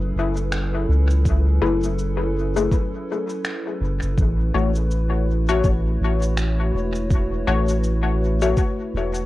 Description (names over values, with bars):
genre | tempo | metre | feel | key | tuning
ambient dub | 82 BPM | 4/4 | swing 58% on 16ths | unclear | A4 = 445 Hz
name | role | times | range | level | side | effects
warbly tape-like pad | sustained chords | 0.0-9.3 s | F#3 to C#5 | -28 LUFS | right 1 dB | chorus, built-in reverb, cassette tape
soft dub sub bass | bass | 0.0-9.3 s | E1 to C#2 | -21 LUFS | equal | none
electronic cabasa and finger snaps | drums | 0.4-9.3 s | none | -32 LUFS | equal | overdrive, cassette tape, dub echo
electronic kick drum | drums | 1.3-8.7 s | none | -21 LUFS | equal | cassette tape
filtered dub chord stab | stabs | 1.6-8.6 s | A3 to C#5 | -25 LUFS | left 5 dB | analog chorus, cassette tape, dub echo, plate reverb
room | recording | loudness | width
light reverb | home recording on cassette | -19 LUFS | side -17 dB against mid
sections
0.0-9.3 A section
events
none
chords
0.0 F#m11; 4.2 A6